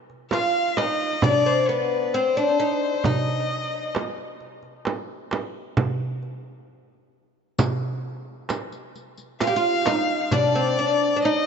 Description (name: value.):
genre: Arabic maqam ensemble.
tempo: 132 BPM (eighths).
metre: 10/8.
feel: straight.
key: unclear.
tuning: A4 = 437 Hz.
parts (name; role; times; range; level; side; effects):
darbuka; percussion; 0.1-10.9 s; none; -29 LUFS; right 2 dB; none.
oud; melody; 0.3-11.5 s; B3 to G4; -22 LUFS; equal; tape echo.
rich violin; second line; 0.3-11.5 s; B4 to F5; -26 LUFS; left 5 dB; none.
frame drum; percussion; 0.3-10.5 s; none; -28 LUFS; right 4 dB; none.
riq; percussion; 7.6-11.3 s; none; -36 LUFS; left 7 dB; none.
room: wet plate reverb, RT60 2.7 s.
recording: dreamy mix soaked in reverb, nothing above 7.8 kHz.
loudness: -21 LUFS.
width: side -6 dB against mid.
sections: 0.0-11.5 A section.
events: none.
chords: none.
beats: 0.31 0.76 1.22 1.67 2.13 2.58 | 3.04 3.50 3.95 4.41 4.86 5.32 5.77 6.23 6.68 7.14 | 7.59 8.04 8.50 8.96 9.41 9.86 10.32 10.77 11.23.